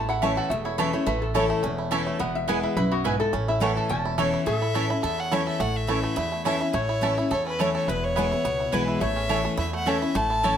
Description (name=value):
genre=bluegrass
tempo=211 BPM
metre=4/4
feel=swing 53% on 8ths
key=A major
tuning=A4 = 440 Hz
part: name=lap resonator guitar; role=second line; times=0.0-10.6 s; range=F#4 to A5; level=-30 LUFS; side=left 2 dB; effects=none
part: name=picked steel-string acoustic guitar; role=accompaniment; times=0.0-10.6 s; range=E2 to E4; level=-27 LUFS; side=left 3 dB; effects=none
part: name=bluegrass banjo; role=arpeggios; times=0.0-10.6 s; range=E3 to A4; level=-30 LUFS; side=right 4 dB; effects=none
part: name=upright bass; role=bass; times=0.0-10.6 s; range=E1 to E2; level=-32 LUFS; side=right 1 dB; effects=none
part: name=mandolin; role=stabs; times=0.2-10.5 s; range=A3 to A5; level=-28 LUFS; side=right 5 dB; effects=none
part: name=clear fiddle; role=melody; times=4.2-10.6 s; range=B4 to A5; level=-28 LUFS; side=left 1 dB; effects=tape echo
room=moderate studio reverb, RT60 0.8 s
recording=none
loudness=-22 LUFS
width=side -9 dB against mid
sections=0.0-4.5 A section; 4.5-10.6 B section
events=resonator guitar played with a steel bar solo 0.0-4.5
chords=0.0 A; 2.2 E; 3.3 A; 7.9 E; 9.0 A